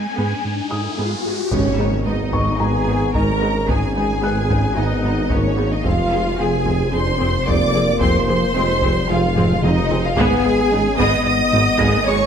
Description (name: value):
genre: cinematic, hybrid orchestral and electronic film score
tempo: 111 BPM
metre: 4/4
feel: straight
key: unclear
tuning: A4 = 440 Hz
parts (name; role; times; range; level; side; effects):
- warm symphonic violin section; melody; 0.0-12.3 s; C#5 to D#6; -26 LUFS; left 2 dB; none
- fat analog bass; riff; 0.0-12.2 s; F2 to G#3; -23 LUFS; right 2 dB; none
- riser and impact; sound effects; 0.0-3.7 s; none; -26 LUFS; left 3 dB; none
- warm symphonic viola section; accompaniment; 0.2-12.1 s; G#3 to G#4; -26 LUFS; equal; none
- warm symphonic cello section; bass; 0.2-12.3 s; G#2 to D#5; -23 LUFS; right 2 dB; none
- felt-muted upright piano; texture; 0.7-5.9, 11.8-12.3 s; A#5 to A#6; -29 LUFS; left 3 dB; tape echo
- warm symphonic violin section; second line; 1.5-12.3 s; C#5 to D#6; -27 LUFS; equal; none
- mellow French horn section; sustained chords; 1.5-12.3 s; G3 to D#4; -25 LUFS; left 5 dB; none
- detuned saw bass; bass; 1.5-12.3 s; F1 to G#1; -28 LUFS; left 1 dB; none
- warm symphonic double bass section; bass; 1.5-12.1 s; F1 to G#1; -26 LUFS; right 2 dB; none
- warm tuba; bass; 1.5-12.2 s; F1 to G#1; -25 LUFS; right 2 dB; none
- taiko ensemble; drums; 1.5-12.3 s; none; -25 LUFS; left 1 dB; none
room: moderate scoring stage reverb, RT60 1.5 s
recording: none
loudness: -16 LUFS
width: side -8 dB against mid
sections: 0.0-1.5 A section; 1.5-12.3 A section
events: riser 0.0-1.5; impact 1.5-3.7; drum fill 9.4-10.2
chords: 0.0 G#m; 5.9 Fm; 10.2 G#m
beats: 0.45 0.99 | 1.53 2.07 2.61 3.15 | 3.69 4.23 4.77 5.31 | 5.85 6.39 6.93 7.47 | 8.02 8.55 9.10 9.64 | 10.18 10.72 11.26 11.80